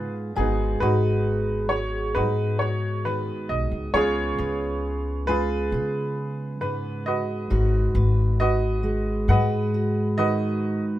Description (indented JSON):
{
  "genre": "acoustic folk-pop ballad",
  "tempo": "67 BPM",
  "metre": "4/4",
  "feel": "straight",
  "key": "G# dorian",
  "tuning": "A4 = 444 Hz",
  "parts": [
    { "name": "clear upright piano", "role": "melody", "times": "0.0-11.0 s", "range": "B3 to F#5", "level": "-27 LUFS", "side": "right 1 dB", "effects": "none" },
    { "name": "fingerpicked steel-string acoustic guitar", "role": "accompaniment", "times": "0.0-11.0 s", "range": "G#2 to B4", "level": "-26 LUFS", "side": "right 2 dB", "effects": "none" },
    { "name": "upright bass", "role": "bass", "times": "0.0-10.8 s", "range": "G#1 to C#3", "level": "-25 LUFS", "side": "left 1 dB", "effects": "none" }
  ],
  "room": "moderate studio reverb, RT60 0.5 s",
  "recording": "minimal, uncompressed stereo recording",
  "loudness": "-22 LUFS",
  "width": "side -14 dB against mid",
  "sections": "0.0-11.0 A section",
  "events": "none",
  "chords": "0.4 G#m7; 3.9 C#7; 7.5 G#m7"
}